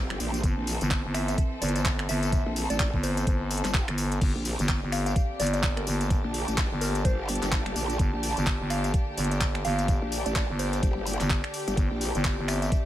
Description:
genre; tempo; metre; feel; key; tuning
bass house; 127 BPM; 4/4; swing 59% on 16ths; G dorian; A4 = 437 Hz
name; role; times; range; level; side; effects
rich symphonic string section; sustained chords; 0.0-12.9 s; D3 to A4; -37 LUFS; left 2 dB; sidechain pumping
growl bass; bass; 0.0-12.1 s; G1 to Bb1; -30 LUFS; equal; chorus, overdrive, sidechain pumping
airy breathy pad; texture; 0.0-12.9 s; C4 to A5; -37 LUFS; equal; chorus, sidechain pumping
garage drum kit; drums; 0.1-12.8 s; crash cymbal, finger snaps, handclaps, hi-hat, tambourine; -32 LUFS; equal; none
growling FM bass; bass; 0.4-12.7 s; G1; -28 LUFS; equal; overdrive, sidechain pumping
electronic kick drum; drums; 0.4-12.8 s; none; -26 LUFS; equal; none
soft synth bell; melody; 1.1-12.7 s; Bb4 to F5; -35 LUFS; right 1 dB; chorus, phaser, digital delay
room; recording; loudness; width
little or no reverb; none; -24 LUFS; side -13 dB against mid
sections
0.0-12.9 A section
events
none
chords
0.0 C/G; 4.2 Gm; 11.8 C/G

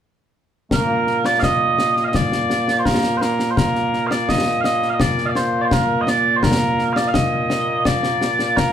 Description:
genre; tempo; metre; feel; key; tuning
scottish traditional, Scottish pipe music; 84 BPM; 4/4; straight; Bb major; A4 = 442 Hz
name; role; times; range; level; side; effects
mellow small bagpipes; melody; 0.7-8.7 s; Bb2 to F5; -17 LUFS; right 1 dB; none
concert snare drum and concert bass drum; drums; 0.7-8.7 s; none; -21 LUFS; left 2 dB; none
room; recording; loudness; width
moderate large studio reverb, RT60 0.9 s; band playing live in one room; -16 LUFS; side -9 dB against mid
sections
0.7-8.7 A section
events
none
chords
none

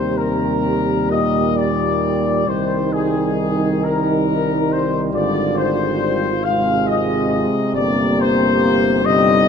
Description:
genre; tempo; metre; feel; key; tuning
classical, hymn-like piece for brass band; 43-47 BPM (dotted quarters); 6/8; rubato; Eb major; A4 = 441 Hz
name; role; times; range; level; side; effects
clear trumpet section; melody; 0.0-9.5 s; Ab4 to F5; -20 LUFS; left 6 dB; none
mellow French horn section; second line; 0.0-9.5 s; Eb4 to G4; -24 LUFS; right 6 dB; none
warm euphonium; accompaniment; 0.0-9.5 s; Bb2 to Eb3; -23 LUFS; right 3 dB; none
warm trombone section; accompaniment; 0.0-9.5 s; G3 to Bb3; -23 LUFS; left 2 dB; none
warm tuba; bass; 0.0-9.5 s; G1 to Eb2; -22 LUFS; equal; none
room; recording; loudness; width
moderate concert hall reverb, RT60 2.0 s; dark, warm production; -15 LUFS; side -7 dB against mid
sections
0.0-9.5 A section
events
none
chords
0.0 Eb; 2.5 Cm; 5.1 Abmaj7; 7.7 Eb/G

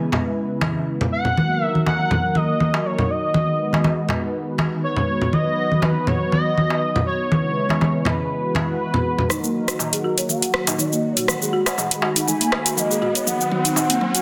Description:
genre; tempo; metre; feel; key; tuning
afro house; 121 BPM; 4/4; swing 54% on 16ths; Eb phrygian; A4 = 438 Hz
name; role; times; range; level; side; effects
warm analog pad; sustained chords; 0.0-14.2 s; Db3 to Cb6; -28 LUFS; equal; chorus
congas; percussion; 0.1-9.3 s; none; -24 LUFS; equal; none
darbuka; percussion; 0.1-13.9 s; none; -29 LUFS; equal; none
expressive synth lead; melody; 1.1-14.2 s; B4 to Ab5; -27 LUFS; equal; analog chorus, digital delay
folk marimba with medium mallets; arpeggios; 9.3-14.2 s; Bb3 to Db5; -27 LUFS; equal; low-pass filter, digital delay
afro-pop drum kit; drums; 9.3-14.2 s; hi-hat, rim click, shaker, toms; -24 LUFS; equal; soft clipping on snare, high-pass filter on snare, high-pass filter on toms, high-pass filter on perc, high-pass filter on hats
riser; sound effects; 10.4-14.2 s; none; -32 LUFS; equal; none
room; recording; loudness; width
moderate plate reverb, RT60 1.3 s, digital ambience; dense, heavily limited modern master; -21 LUFS; mono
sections
0.0-9.3 A section; 9.3-14.2 B section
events
filter sweep on analog synth pad 0.0-9.3; build-up 9.3-14.2; drum fill 9.3-14.2; filter sweep on analog synth lead 9.3-14.2; riser 10.4-14.2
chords
0.0 Dbm7; 1.4 Ebm; 3.3 Abm7; 5.3 B; 7.3 Dbm7; 8.3 Eadd9; 9.3 Ebm; 11.3 Abm7; 13.3 B

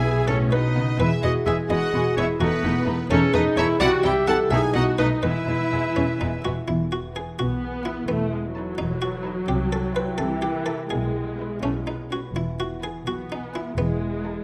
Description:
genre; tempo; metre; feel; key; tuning
cinematic, playful, whimsical film cue; 85 BPM (dotted quarters); 6/8; straight; E major; A4 = 441 Hz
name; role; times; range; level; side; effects
buff-stop harpsichord; melody; 0.0-14.4 s; B3 to F#5; -32 LUFS; equal; none
rich studio violin section; melody; 0.0-14.4 s; B4 to A5; -35 LUFS; equal; none
bright oboe; second line; 0.0-6.4 s; F#4 to F#5; -32 LUFS; equal; none
mellow clarinet; second line; 0.0-6.4 s; B3 to A4; -30 LUFS; equal; none
warm studio violin section; second line; 0.0-14.4 s; G3 to C5; -35 LUFS; equal; none
warm studio viola section; accompaniment; 0.0-14.4 s; E3 to A4; -31 LUFS; equal; none
mellow French horn section; sustained chords; 0.0-6.3 s; D#4 to A4; -30 LUFS; equal; none
concert harp; arpeggios; 0.0-14.4 s; B2 to C5; -33 LUFS; equal; none
warm studio cello section; bass; 0.0-14.3 s; E2 to C#3; -32 LUFS; equal; none
warm studio double bass section; bass; 0.0-14.3 s; E1 to C2; -31 LUFS; equal; none
room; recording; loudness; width
moderate scoring stage reverb, RT60 1.5 s; none; -24 LUFS; mono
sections
0.0-6.7 A section; 6.7-14.4 A section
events
none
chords
0.3 B; 1.0 E; 2.4 B7/E; 3.8 C; 4.5 B7; 5.2 E; 8.1 B7/E; 9.5 C; 10.2 C7; 10.9 E/B; 11.6 B5; 12.4 E; 13.8 B7/E

